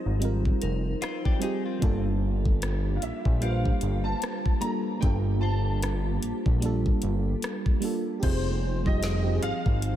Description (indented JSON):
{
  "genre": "contemporary R&B",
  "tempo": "75 BPM",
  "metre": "4/4",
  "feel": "swing 58% on 16ths",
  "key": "unclear",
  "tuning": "A4 = 441 Hz",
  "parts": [
    { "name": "warm concert grand piano", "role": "melody", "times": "0.0-10.0 s", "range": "C5 to Bb5", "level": "-35 LUFS", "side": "equal", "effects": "ensemble chorus, diffuse ambient delay" },
    { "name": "mellow FM electric piano", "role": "accompaniment", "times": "0.0-10.0 s", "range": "G3 to C5", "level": "-32 LUFS", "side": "right 3 dB", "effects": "chorus" },
    { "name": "glassy FM pad", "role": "sustained chords", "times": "0.0-10.0 s", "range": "F3 to C5", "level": "-35 LUFS", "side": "equal", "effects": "ensemble chorus, built-in reverb" },
    { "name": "glassy synth bell", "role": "texture", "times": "0.0-10.0 s", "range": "G4 to F5", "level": "-45 LUFS", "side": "left 2 dB", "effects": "chorus, phaser, diffuse ambient delay" },
    { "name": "fat analog bass", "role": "bass", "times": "0.1-10.0 s", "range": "F1 to Bb1", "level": "-27 LUFS", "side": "equal", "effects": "none" },
    { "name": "smooth R&B drum kit", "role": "drums", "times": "0.2-10.0 s", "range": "crash cymbal, hi-hat, kick drum, rim click, snare drum", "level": "-27 LUFS", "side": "equal", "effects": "none" },
    { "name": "direct-recorded clean electric guitar", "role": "arpeggios", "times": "1.0-2.0 s", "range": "C4 to Ab4", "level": "-38 LUFS", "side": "left 8 dB", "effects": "wide subtle chorus, diffuse ambient delay" }
  ],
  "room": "light reverb, digital ambience",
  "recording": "none",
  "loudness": "-24 LUFS",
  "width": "side -12 dB against mid",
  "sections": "0.0-8.2 A section; 8.2-10.0 B section",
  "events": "none",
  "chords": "0.0 Fm9; 1.8 Gm9; 8.2 Fm9"
}